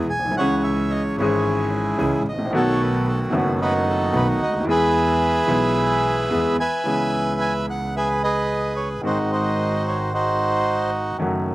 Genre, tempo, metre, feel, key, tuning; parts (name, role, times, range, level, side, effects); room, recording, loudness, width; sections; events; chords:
tango; 111 BPM; 4/4; rubato; E major, C# minor from 6.9 s; A4 = 441 Hz
bandoneon; melody; 0.0-11.2 s; D#4 to G#5; -21 LUFS; right 1 dB
clear concert grand piano; accompaniment; 0.0-11.5 s; F#1 to G#4; -23 LUFS; left 1 dB
warm double bass; bass; 0.0-11.5 s; F#1 to E2; -28 LUFS; right 1 dB
little or no reverb; recorded outdoors, with no room sound; -18 LUFS; side -17 dB against mid
0.0-6.9 A section; 6.9-11.5 B section
0.4 C#m; 2.5 B7; 4.7 E; 6.9 C#m7; 9.1 G#7